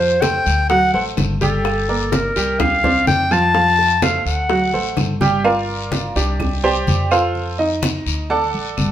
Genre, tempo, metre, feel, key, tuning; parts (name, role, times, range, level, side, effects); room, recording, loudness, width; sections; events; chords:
latin, Cuban son and guajira; 126 BPM; 4/4; straight; G minor; A4 = 442 Hz
warm clarinet; melody; 0.0-5.2 s; A4 to A5; -17 LUFS; left 1 dB
clear grand piano; arpeggios; 0.0-8.9 s; F3 to A5; -20 LUFS; right 3 dB
upright bass; bass; 0.0-8.9 s; G1 to F2; -23 LUFS; equal
bongos; percussion; 0.2-5.4 s; -26 LUFS; left 4 dB
claves; percussion; 0.2-8.9 s; -34 LUFS; equal
congas; percussion; 0.2-8.9 s; -22 LUFS; left 1 dB
guiro; percussion; 0.2-8.9 s; -30 LUFS; left 6 dB
moderate studio reverb, RT60 0.8 s; band playing live in one room; -15 LUFS; side -11 dB against mid
0.0-5.4 A section; 5.4-8.9 B section
grand piano solo 5.4-8.9
0.0 F; 0.7 D7; 1.6 Gm; 2.6 Csus2; 3.5 F; 4.5 D7; 5.4 Gm7; 6.4 Csus2; 7.3 F; 8.3 D